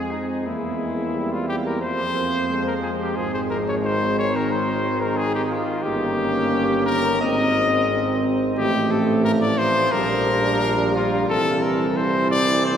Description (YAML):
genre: classical, brass quintet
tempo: 89 BPM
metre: 4/4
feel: rubato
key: unclear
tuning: A4 = 440 Hz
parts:
  - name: mellow trumpet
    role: melody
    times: 0.0-12.8 s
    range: Eb4 to Eb5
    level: -22 LUFS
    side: left 2 dB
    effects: none
  - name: mellow flugelhorn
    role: second line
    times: 0.0-12.8 s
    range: C4 to F4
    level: -30 LUFS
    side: right 3 dB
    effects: none
  - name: clear trombone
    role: accompaniment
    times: 0.0-12.8 s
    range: Eb3 to Ab3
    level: -30 LUFS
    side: right 2 dB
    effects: none
  - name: dark French horn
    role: accompaniment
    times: 0.0-12.8 s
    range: G3 to C4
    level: -26 LUFS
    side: equal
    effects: none
  - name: mellow tuba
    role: bass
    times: 0.0-12.8 s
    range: G1 to F2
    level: -26 LUFS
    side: right 2 dB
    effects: none
room: wet cathedral reverb, RT60 4.4 s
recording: heard from further back in the room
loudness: -19 LUFS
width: side -8 dB against mid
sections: 0.0-12.8 A section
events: none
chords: 0.5 C7/E; 1.8 Fm; 3.2 Ab; 5.8 Eb7/G; 7.2 Ab; 8.6 F/A; 9.9 Gm7/Bb; 11.3 C